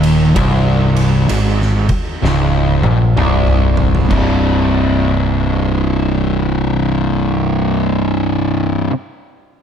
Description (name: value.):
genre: stoner and doom metal.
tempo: 64 BPM.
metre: 4/4.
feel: swing 64% on 8ths.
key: C phrygian.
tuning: A4 = 437 Hz.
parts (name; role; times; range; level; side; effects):
fuzz guitar; riff; 0.0-8.9 s; C2 to C3; -14 LUFS; equal; distortion.
picked electric bass; bass; 0.0-8.9 s; C1 to Bb1; -18 LUFS; equal; overdrive.
oversized low-tuned drum kit; drums; 0.0-4.4 s; crash cymbal, kick drum, ride cymbal, snare drum, toms; -20 LUFS; equal; none.
room: small room ambience.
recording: none.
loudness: -12 LUFS.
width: side -8 dB against mid.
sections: 0.0-4.1 A section; 4.1-7.9 B section.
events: drum fill 2.2-4.1.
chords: 0.0 Cm; 4.1 C5.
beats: | 0.35 1.29 2.23 3.16 | 4.10 5.04 5.98 6.92.